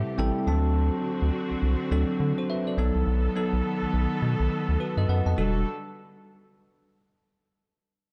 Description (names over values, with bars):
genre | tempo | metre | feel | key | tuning
R&B | 104 BPM | 4/4 | swing 60% on 16ths | E minor | A4 = 440 Hz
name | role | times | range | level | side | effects
bell-like tine electric piano | accompaniment | 0.0-5.6 s | F#3 to A5 | -30 LUFS | equal | none
warm studio string section | sustained chords | 0.0-5.6 s | C3 to A4 | -36 LUFS | equal | none
round analog bass | bass | 0.0-5.6 s | E1 to D3 | -27 LUFS | equal | none
room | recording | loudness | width
light reverb, small room ambience | dark, warm production | -26 LUFS | mono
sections
0.0-5.4 A section; 5.4-7.7 B section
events
tine electric piano fill 0.0-0.8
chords
0.5 D7; 2.8 B7; 5.4 Em11